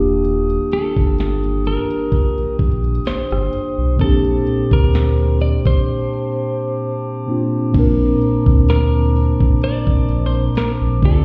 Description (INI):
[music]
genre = contemporary R&B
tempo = 64 BPM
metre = 4/4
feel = swing 54% on 16ths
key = unclear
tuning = A4 = 444 Hz
[part]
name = mellow tine electric piano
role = accompaniment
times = 0.0-11.2 s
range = Bb2 to D5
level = -21 LUFS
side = equal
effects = none
[part]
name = glass harmonica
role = sustained chords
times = 0.0-11.2 s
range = D4 to Eb6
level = -32 LUFS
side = equal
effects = sidechain pumping
[part]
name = sub bass with octave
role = bass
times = 0.0-11.2 s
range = Eb1 to D2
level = -19 LUFS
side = equal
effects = none
[part]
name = trap drum kit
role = drums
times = 0.2-11.2 s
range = crash cymbal, hi-hat, kick drum, rim click, snare drum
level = -19 LUFS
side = equal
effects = none
[part]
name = clean electric guitar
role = melody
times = 0.7-11.2 s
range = A4 to D5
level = -27 LUFS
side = equal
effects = none
[sound]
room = digital ambience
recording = heard muffled through a wall, stone room reverb, EQ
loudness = -17 LUFS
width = mono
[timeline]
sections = 0.0-7.7 A section; 7.7-11.2 B section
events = break 5.9-7.7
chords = 0.0 Ebmaj7; 4.0 Bb69; 7.7 Bbmaj9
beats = | 0.24 1.18 2.12 3.06 | 4.00 4.93 5.87 6.81 | 7.75 8.68 9.62 10.56